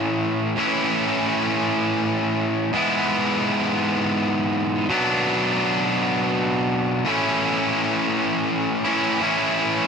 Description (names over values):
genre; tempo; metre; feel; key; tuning
rock; 56 BPM (dotted quarters); 6/8; straight; A major; A4 = 440 Hz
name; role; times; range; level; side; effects
distorted electric guitar; solo; 0.0-9.9 s; G#2 to E4; -19 LUFS; equal; overdrive, digital delay
room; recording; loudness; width
light reverb; none; -19 LUFS; side -6 dB against mid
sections
0.0-7.1 A section; 7.1-9.9 B section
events
none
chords
0.0 A; 2.7 E/G#; 4.9 Bm; 7.1 A